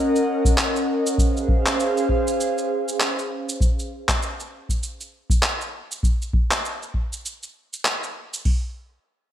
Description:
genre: sunset chillout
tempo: 99 BPM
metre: 4/4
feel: swing 58% on 16ths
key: unclear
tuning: A4 = 435 Hz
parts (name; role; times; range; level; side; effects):
- airy breathy pad; sustained chords; 0.0-3.6 s; Db4 to Gb5; -22 LUFS; right 1 dB; chorus
- electronic cabasa and handclaps; drums; 0.2-8.4 s; none; -25 LUFS; equal; none
- soft vintage rhythm box; drums; 0.5-8.6 s; hi-hat, kick drum; -21 LUFS; equal; none
room: moderate lush hall reverb, RT60 1.6 s, digital ambience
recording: bright 1980s-style digital production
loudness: -20 LUFS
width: side -11 dB against mid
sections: 0.0-8.5 A section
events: none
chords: 0.0 Ebm7; 1.2 Dbmaj7; 3.6 N.C.

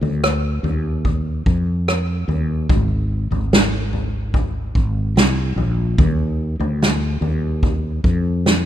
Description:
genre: pop ballad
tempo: 73 BPM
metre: 4/4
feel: straight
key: unclear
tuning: A4 = 440 Hz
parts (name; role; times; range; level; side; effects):
- mellow fretless electric bass; bass; 0.0-8.7 s; Ab1 to F2; -20 LUFS; equal; wide subtle chorus
- unplugged drum kit; drums; 0.0-8.6 s; kick drum, rim click, snare drum, toms; -19 LUFS; equal; none
room: little or no reverb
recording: rough home demo mix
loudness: -17 LUFS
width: side -11 dB against mid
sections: 0.0-8.7 A section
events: none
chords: none

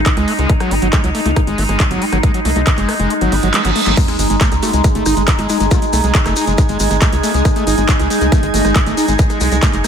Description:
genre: psychedelic trance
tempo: 138 BPM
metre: 4/4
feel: straight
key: unclear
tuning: A4 = 440 Hz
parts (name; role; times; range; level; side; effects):
- overtone-sweeping drone; sustained chords; 0.0-9.9 s; G#3 to D#4; -19 LUFS; equal; chorus, built-in reverb, sidechain pumping
- tight sequencer bass; bass; 0.0-9.8 s; F#1 to C#2; -18 LUFS; equal; none
- screaming distorted acid line; riff; 0.1-9.9 s; F#3 to D#4; -20 LUFS; moving between left 3 dB and right 4 dB; distortion, chorus, auto-pan, sidechain pumping, dub echo
- big-room dance drum kit; drums; 0.1-9.9 s; crash cymbal, handclaps, hi-hat, rim click, snare drum; -22 LUFS; equal; overdrive
- electronic kick drum; drums; 0.1-9.7 s; none; -15 LUFS; equal; overdrive
- reverse cymbal and sub drop; sound effects; 3.3-5.7 s; none; -24 LUFS; right 3 dB; none
- resonant blip pluck; second line; 4.0-6.1 s; B#3 to F#4; -30 LUFS; left 1 dB; none
- shekere; percussion; 4.0-9.9 s; none; -27 LUFS; left 6 dB; none
- airy breathy pad; texture; 4.5-9.9 s; D#4 to G#5; -22 LUFS; right 3 dB; chorus, sidechain pumping
room: light reverb, digital ambience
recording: none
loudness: -12 LUFS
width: side -8 dB against mid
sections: 0.0-4.0 A section; 4.0-9.9 B section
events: kick drops out 3.1-4.0; reverse cymbal 3.3-4.0; drum fill 3.5-4.0; drop 4.0-9.9; impact 4.0-5.7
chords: 0.0 G#5

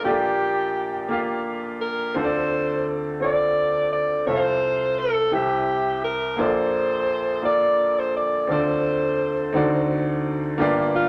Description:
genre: gospel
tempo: 57 BPM (dotted quarters)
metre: 6/8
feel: straight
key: unclear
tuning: A4 = 440 Hz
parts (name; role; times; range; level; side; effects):
- warm alto saxophone; melody; 0.0-11.1 s; F4 to D5; -25 LUFS; equal; none
- clear upright piano; accompaniment; 0.0-11.1 s; G1 to F5; -26 LUFS; equal; none
room: wet studio reverb, RT60 0.7 s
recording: none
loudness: -23 LUFS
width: mono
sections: 0.0-11.1 A section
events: none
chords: 0.0 Gm7/Bb; 2.2 Dm7; 4.3 F/C; 5.3 C; 6.4 Bbmaj7; 8.5 Dm7; 9.6 D7b9

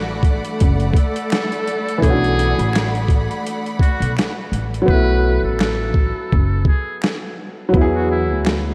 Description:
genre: lo-fi hip hop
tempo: 84 BPM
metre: 4/4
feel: swing 55% on 16ths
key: B dorian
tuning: A4 = 440 Hz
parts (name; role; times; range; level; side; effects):
- trumpet with metal mute; melody; 0.0-8.4 s; E4 to B4; -30 LUFS; equal; diffuse ambient delay
- bright upright piano; accompaniment; 0.0-8.7 s; E3 to G#4; -24 LUFS; equal; cassette tape
- clear studio string section; sustained chords; 0.0-4.8 s; A3 to B5; -28 LUFS; equal; none
- upright bass; bass; 0.0-8.7 s; F#1 to E2; -22 LUFS; equal; none
- boom bap sampler-style drum kit; drums; 0.2-8.6 s; finger snaps, hi-hat, kick drum, snare drum; -21 LUFS; equal; none
- finger snap; percussion; 1.3-8.6 s; none; barely audible; none; none
room: moderate lush hall reverb, RT60 2.8 s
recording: dreamy mix soaked in reverb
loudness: -18 LUFS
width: mono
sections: 0.0-4.9 A section; 4.9-8.7 B section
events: hi-hats muted 4.9-8.7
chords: 0.0 Bm7; 4.9 B5; 7.7 E7

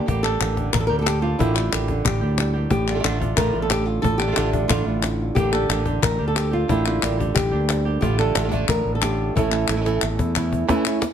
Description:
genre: flamenco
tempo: 181 BPM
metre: 4/4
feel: straight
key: unclear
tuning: A4 = 440 Hz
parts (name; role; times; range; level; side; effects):
- flamenco guitar; melody; 0.0-11.1 s; E2 to Bb4; -23 LUFS; right 1 dB; none
- flamenco guitar; stabs; 0.1-11.0 s; D3 to G4; -28 LUFS; right 5 dB; none
- fretless electric bass; bass; 0.1-10.6 s; A1 to E2; -24 LUFS; equal; none
- cajon; percussion; 0.1-11.1 s; none; -26 LUFS; left 4 dB; none
- palmas hand claps; percussion; 0.2-11.0 s; none; -27 LUFS; left 6 dB; none
room: light reverb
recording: none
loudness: -19 LUFS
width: side -8 dB against mid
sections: 0.1-10.7 A section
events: drum fill 9.7-10.7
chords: 0.1 Gmadd9/A; 2.7 Dm/A; 5.4 Gmadd9/A; 8.0 Dm/A; 9.4 A

